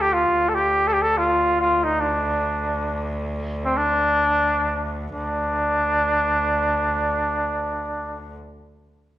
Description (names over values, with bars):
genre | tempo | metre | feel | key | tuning
Turkish makam ensemble | free time | none | none | D minor | A4 = 440 Hz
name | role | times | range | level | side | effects
trumpet with bucket mute | melody | 0.0-8.3 s | C4 to A4 | -20 LUFS | equal | none
clear cello | drone | 0.0-8.4 s | D2 | -29 LUFS | equal | none
room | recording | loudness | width
wet recital hall reverb, RT60 1.4 s | none | -19 LUFS | side -13 dB against mid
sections
0.0-5.1 A section; 5.1-7.5 B section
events
none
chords
none